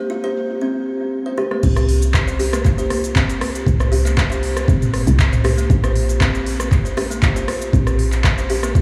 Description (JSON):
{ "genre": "afro house", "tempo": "118 BPM", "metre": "4/4", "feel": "straight", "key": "unclear", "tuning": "A4 = 441 Hz", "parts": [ { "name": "kalimba", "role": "arpeggios", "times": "0.0-8.8 s", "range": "Bb3 to C5", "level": "-24 LUFS", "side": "equal", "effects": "sidechain pumping, diffuse ambient delay" }, { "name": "deep house drum kit", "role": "drums", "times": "0.1-8.8 s", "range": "crash cymbal, handclaps, hi-hat, rim click, shaker, toms", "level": "-25 LUFS", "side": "equal", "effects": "low-pass filter on perc, low-pass filter on snare, low-pass filter on toms, low-pass filter on cymbals, low-pass filter on hats, low-pass filter on room" }, { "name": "woody FM bass", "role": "bass", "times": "1.6-8.8 s", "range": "G1 to C2", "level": "-22 LUFS", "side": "equal", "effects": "sidechain pumping" }, { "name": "electronic kick drum", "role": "drums", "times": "1.6-8.8 s", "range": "none", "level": "-19 LUFS", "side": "equal", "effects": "none" } ], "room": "moderate huge ambient reverb, RT60 7.7 s", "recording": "dreamy mix soaked in reverb, small room ambience", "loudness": "-18 LUFS", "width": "mono", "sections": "0.0-1.6 A section; 1.6-8.8 B section", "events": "filter sweep on kalimba 0.0-1.6; drum fill 1.4; drop 1.6-8.8", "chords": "0.0 Bb5; 1.6 C5; 5.7 N.C." }